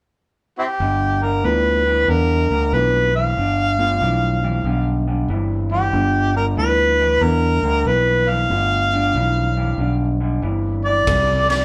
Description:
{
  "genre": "electric blues shuffle",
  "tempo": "94 BPM",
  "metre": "4/4",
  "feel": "swing 66% on 8ths",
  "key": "G mixolydian",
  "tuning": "A4 = 437 Hz",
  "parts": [
    { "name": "mellow harmonica", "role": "melody", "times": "0.6-11.6 s", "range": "C4 to F5", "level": "-21 LUFS", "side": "equal", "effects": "overdrive" },
    { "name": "electric guitar through a small old amp", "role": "riff", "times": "0.8-11.6 s", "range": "G2 to G3", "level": "-27 LUFS", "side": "equal", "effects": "none" },
    { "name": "fingered electric bass", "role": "bass", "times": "0.8-11.6 s", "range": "G1 to E2", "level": "-23 LUFS", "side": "equal", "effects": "none" },
    { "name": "mellow reed electric piano", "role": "accompaniment", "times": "1.4-9.5 s", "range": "G3 to F4", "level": "-29 LUFS", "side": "equal", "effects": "none" },
    { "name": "raw garage drum kit", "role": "drums", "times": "11.1-11.6 s", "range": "kick drum, ride cymbal, snare drum", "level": "-26 LUFS", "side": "equal", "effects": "none" }
  ],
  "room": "wet studio reverb, RT60 0.6 s",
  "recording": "band playing live in one room",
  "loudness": "-18 LUFS",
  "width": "mono",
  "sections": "0.8-11.6 A section",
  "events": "none",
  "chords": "0.0 N.C.; 0.8 G9; 11.1 Csus2"
}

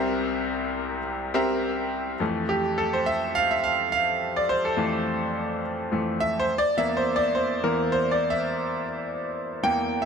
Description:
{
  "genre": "pop",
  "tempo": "105 BPM",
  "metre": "4/4",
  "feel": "swing 55% on 16ths",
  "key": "F major",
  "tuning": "A4 = 440 Hz",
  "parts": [
    { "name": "bright grand piano", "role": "solo", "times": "0.0-10.1 s", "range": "C2 to G5", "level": "-23 LUFS", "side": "equal", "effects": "none" }
  ],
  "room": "moderate plate reverb, RT60 3.0 s",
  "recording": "none",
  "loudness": "-23 LUFS",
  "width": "side -6 dB against mid",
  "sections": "0.0-2.2 A section; 2.2-10.1 B section",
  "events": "grand piano solo 2.2-10.1",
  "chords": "0.0 C7; 2.2 Fmaj7; 6.5 E7(b5, no3)"
}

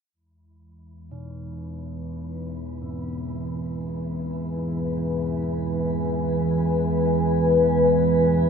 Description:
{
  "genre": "dark ambient drone",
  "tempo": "free time",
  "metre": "none",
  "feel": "none",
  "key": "E major",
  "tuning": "A4 = 440 Hz",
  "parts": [
    { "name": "deep dark ambient pad", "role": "sustained chords", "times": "1.2-8.5 s", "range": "E3 to G#5", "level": "-22 LUFS", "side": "equal", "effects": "chorus, built-in reverb, shimmer reverb" },
    { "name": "deep rumbling drone", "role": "drone", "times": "0.8-8.5 s", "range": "E2 to G#3", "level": "-33 LUFS", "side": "equal", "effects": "built-in reverb" },
    { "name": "wind-like tuned noise texture", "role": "texture", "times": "1.8-8.5 s", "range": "E4", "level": "-39 LUFS", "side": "right 2 dB", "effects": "built-in reverb, shimmer reverb" },
    { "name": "bronze singing bowl", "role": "arpeggios", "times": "1.1-8.5 s", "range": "G#2 to E3", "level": "-37 LUFS", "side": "right 1 dB", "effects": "diffuse ambient delay" }
  ],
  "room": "wet huge ambient reverb, RT60 8.1 s",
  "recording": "dark, warm production",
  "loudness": "-22 LUFS",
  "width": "side -6 dB against mid",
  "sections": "0.1-8.5 A section",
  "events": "fade-in on synth drone 0.1-8.5; fade-in on synth texture 0.1-8.5",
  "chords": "0.1 E"
}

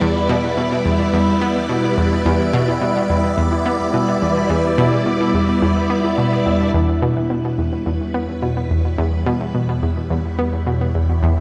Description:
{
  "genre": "ambient, sequencer-driven space music",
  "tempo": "107 BPM",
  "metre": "4/4",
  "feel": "straight",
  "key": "E dorian",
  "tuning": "A4 = 440 Hz",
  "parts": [
    { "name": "phased string machine", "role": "sustained chords", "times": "0.0-11.4 s", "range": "G3 to D5", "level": "-23 LUFS", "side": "equal", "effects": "ensemble chorus, phaser" },
    { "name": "concert harp", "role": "arpeggios", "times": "0.0-9.4 s", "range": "B3 to E5", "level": "-27 LUFS", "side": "equal", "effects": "delay" },
    { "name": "analog pluck", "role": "riff", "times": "0.0-11.4 s", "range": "E2 to B3", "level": "-21 LUFS", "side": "equal", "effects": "chorus, delay" },
    { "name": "twinkling granular texture", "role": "texture", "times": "0.0-11.4 s", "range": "B4 to C#5", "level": "-32 LUFS", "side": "equal", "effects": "built-in reverb" },
    { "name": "fat analog bass", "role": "bass", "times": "6.7-11.4 s", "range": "E2", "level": "-27 LUFS", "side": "equal", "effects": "none" }
  ],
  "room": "wet concert hall reverb, RT60 2.5 s",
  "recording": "lossy compression artefacts",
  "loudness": "-18 LUFS",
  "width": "mono",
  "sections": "0.0-6.7 A section; 6.7-11.4 B section",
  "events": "none",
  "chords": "0.0 Em"
}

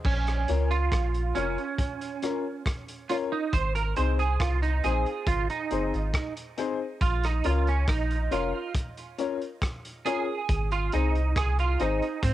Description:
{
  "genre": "roots reggae",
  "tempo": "69 BPM",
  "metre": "4/4",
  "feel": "straight",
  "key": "Bb minor",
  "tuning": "A4 = 441 Hz",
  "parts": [
    { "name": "crunchy breakbeat drum kit", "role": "drums", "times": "0.0-12.3 s", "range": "crash cymbal, hi-hat, kick drum, rim click", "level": "-31 LUFS", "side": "equal", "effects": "cassette tape" },
    { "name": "semi-hollow electric guitar", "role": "accompaniment", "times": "0.1-12.3 s", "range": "C4 to C5", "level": "-30 LUFS", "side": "right 7 dB", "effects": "ensemble chorus, cassette tape, tape echo" },
    { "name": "soft dub sub bass", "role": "bass", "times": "0.1-12.3 s", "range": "F1 to Ab2", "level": "-26 LUFS", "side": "equal", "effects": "none" },
    { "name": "dark grand piano", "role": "stabs", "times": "0.5-12.0 s", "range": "C4 to Db5", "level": "-31 LUFS", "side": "left 7 dB", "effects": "cassette tape" }
  ],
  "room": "small room ambience",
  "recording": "home recording on cassette",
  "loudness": "-25 LUFS",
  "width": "side -14 dB against mid",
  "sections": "0.0-12.3 A section",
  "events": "clean electric guitar solo 0.0-12.3",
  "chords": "0.0 Bbm; 3.5 Ab; 7.0 Bbm; 10.5 Ab"
}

